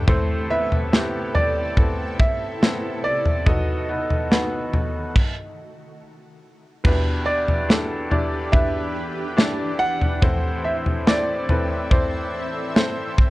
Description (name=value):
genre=pop ballad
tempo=71 BPM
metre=4/4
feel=straight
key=E minor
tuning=A4 = 440 Hz
part: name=clear concert grand piano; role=melody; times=0.0-13.1 s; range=B4 to F#5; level=-26 LUFS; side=right 1 dB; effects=none
part: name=bright upright piano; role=accompaniment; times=0.0-13.3 s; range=E2 to D5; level=-26 LUFS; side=left 1 dB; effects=none
part: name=shimmering ambient pad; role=sustained chords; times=0.0-13.3 s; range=C3 to E5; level=-34 LUFS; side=equal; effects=chorus, built-in reverb
part: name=modern studio drum kit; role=drums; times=0.1-13.3 s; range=crash cymbal, kick drum, snare drum, toms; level=-20 LUFS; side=equal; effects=none
room=light reverb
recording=cassette tape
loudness=-19 LUFS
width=side -18 dB against mid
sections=0.0-6.8 A section; 6.8-13.3 B section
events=stop 5.2-6.8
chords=0.1 Amadd9; 3.5 B7; 6.8 Em7; 10.2 Am